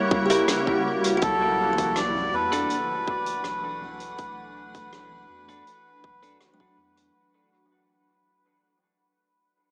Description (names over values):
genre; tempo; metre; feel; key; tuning
ambient dub; 81 BPM; 4/4; straight; B minor; A4 = 440 Hz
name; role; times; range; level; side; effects
granular cloud pad; sustained chords; 0.0-7.2 s; C#3 to F#5; -33 LUFS; equal; built-in reverb
kalimba; arpeggios; 0.0-8.2 s; E3 to A#4; -32 LUFS; equal; dub echo
bubbling stepped-filter texture; texture; 0.0-7.2 s; F#4 to F#5; -34 LUFS; equal; chorus, built-in reverb
electronic kick drum; drums; 0.1-6.7 s; none; -29 LUFS; equal; none
clean electric guitar; stabs; 0.3-6.4 s; D4 to B4; -33 LUFS; equal; none
soft-mallet drum kit; drums; 0.3-7.1 s; hi-hat, rim click, toms; -35 LUFS; equal; dub echo
melodica; melody; 1.2-6.4 s; A4 to D5; -30 LUFS; equal; dub echo
soft dub sub bass; bass; 1.2-7.1 s; F#1 to E2; -44 LUFS; equal; none
room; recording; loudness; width
moderate huge ambient reverb, RT60 6.5 s; small speaker sound; -24 LUFS; mono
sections
0.0-7.2 A section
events
fade-out 0.0-7.2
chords
0.0 F#7b9; 1.2 Bm7